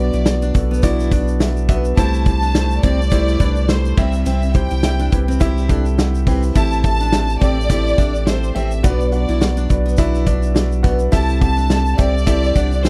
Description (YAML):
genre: piano-driven pop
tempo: 105 BPM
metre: 4/4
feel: swing 56% on 16ths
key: A dorian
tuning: A4 = 442 Hz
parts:
  - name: clear studio violin section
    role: melody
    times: 0.0-12.9 s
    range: C5 to A5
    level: -26 LUFS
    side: equal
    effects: tape echo
  - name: warm concert grand piano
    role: accompaniment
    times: 0.0-12.9 s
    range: A2 to G5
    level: -26 LUFS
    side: equal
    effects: none
  - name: warm sub bass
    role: bass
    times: 0.0-12.9 s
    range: A1 to C2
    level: -20 LUFS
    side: equal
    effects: none
  - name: picked steel-string acoustic guitar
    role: riff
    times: 0.1-12.7 s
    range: B3 to E4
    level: -28 LUFS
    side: equal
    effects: none
  - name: tube shaker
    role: percussion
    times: 0.1-12.9 s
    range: none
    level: -43 LUFS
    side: equal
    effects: none
  - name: loose indie drum kit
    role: drums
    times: 0.3-12.9 s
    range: crash cymbal, hi-hat, kick drum, snare drum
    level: -20 LUFS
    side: equal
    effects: none
room: little or no reverb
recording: none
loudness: -17 LUFS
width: mono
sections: 0.0-12.9 A section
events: none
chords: 0.0 Bm; 2.0 Am7/C; 4.0 C; 6.6 Am7; 8.8 Bm; 11.1 Am7/C